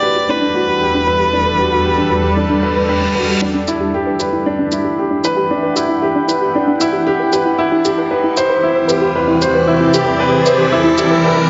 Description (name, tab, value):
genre	piano and strings electronica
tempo	115 BPM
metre	4/4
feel	straight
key	E minor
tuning	A4 = 440 Hz
part	warm violin	melody	0.0-2.9 s	B4 to D5	-19 LUFS	equal	none
part	granular cloud pad	sustained chords	0.0-11.5 s	E2 to G5	-22 LUFS	equal	built-in reverb
part	soft round pluck	arpeggios	0.0-11.4 s	D4 to G5	-22 LUFS	equal	subtle chorus, digital delay
part	warm upright piano	riff	0.0-11.5 s	D4 to C5	-18 LUFS	equal	digital delay
part	reverse cymbal and riser	sound effects	2.6-11.5 s	none	-27 LUFS	equal	none
part	shaker	drums	3.7-11.1 s	none	-26 LUFS	equal	none
room	wet recital hall reverb, RT60 1.6 s, small room ambience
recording	nothing above 7.6 kHz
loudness	-15 LUFS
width	mono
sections	0.0-3.4 A section; 3.4-11.5 B section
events	filter sweep on synth arpeggio sound 0.0-3.4, 3.4-11.5; reverse cymbal 2.6-3.4; build-up 3.4-11.5; riser 3.4-11.5; filter sweep on ambient pad 3.4-11.5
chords	0.0 Gmaj7/E; 3.4 Em7; 7.6 Cmaj7/E